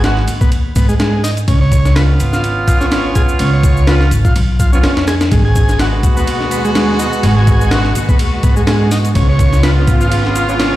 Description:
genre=breakbeat, breaks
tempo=125 BPM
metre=4/4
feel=swing 55% on 16ths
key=G# dorian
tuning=A4 = 440 Hz
part: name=combo organ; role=riff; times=0.0-10.8 s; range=G#3 to C#5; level=-20 LUFS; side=right 1 dB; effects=tube saturation, vintage 12-bit sampler grit, digital delay
part: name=clear horn section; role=stabs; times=0.0-10.8 s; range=G#3 to F#4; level=-20 LUFS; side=right 2 dB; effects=low-pass filter, digital delay
part: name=upright bass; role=bass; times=0.0-10.8 s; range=G#1 to G#2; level=-14 LUFS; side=equal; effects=none
part: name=breakbeat sampler-style drum kit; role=drums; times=0.0-10.7 s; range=hi-hat, kick drum, ride cymbal, snare drum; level=-15 LUFS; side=equal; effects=none
part: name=shaker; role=drums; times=0.0-10.7 s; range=none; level=-31 LUFS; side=left 2 dB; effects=none
part: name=rich studio string section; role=sustained chords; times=5.3-10.8 s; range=B2 to F#4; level=-20 LUFS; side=equal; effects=vintage 12-bit sampler grit, sidechain pumping
room=light reverb, digital ambience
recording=played on a big sound system in a bare room, large studio reverb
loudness=-10 LUFS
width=side -15 dB against mid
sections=0.0-10.8 A section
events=none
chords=0.0 G#m7; 1.5 C#7; 5.3 G#m7; 9.2 C#7

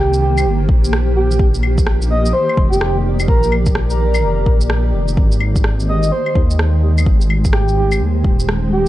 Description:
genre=future garage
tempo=127 BPM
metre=4/4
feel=swing 63% on 16ths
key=unclear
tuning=A4 = 442 Hz
part: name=breathy flute-like synth lead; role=melody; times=0.0-8.9 s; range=G4 to Eb5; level=-20 LUFS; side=right 1 dB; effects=lush chorus, cassette tape, analog delay
part: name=granular cloud pad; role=sustained chords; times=0.0-8.9 s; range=Eb3 to D5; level=-23 LUFS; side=equal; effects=built-in reverb, sidechain pumping
part: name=dark detuned saw bass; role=bass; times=0.0-8.9 s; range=Eb1 to Eb2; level=-16 LUFS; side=equal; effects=sidechain pumping
part: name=electronic shaker, claves and rim click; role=drums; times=0.1-8.6 s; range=none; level=-24 LUFS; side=equal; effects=vintage 12-bit sampler grit, studio reverb
part: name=electronic kick drum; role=drums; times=0.7-8.4 s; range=none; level=-15 LUFS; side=equal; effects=vintage 12-bit sampler grit, studio reverb
room=little or no reverb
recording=cassette tape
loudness=-13 LUFS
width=side -15 dB against mid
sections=0.0-8.9 A section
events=none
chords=0.0 Cm7; 1.4 Ebmaj7; 5.2 Abmaj7

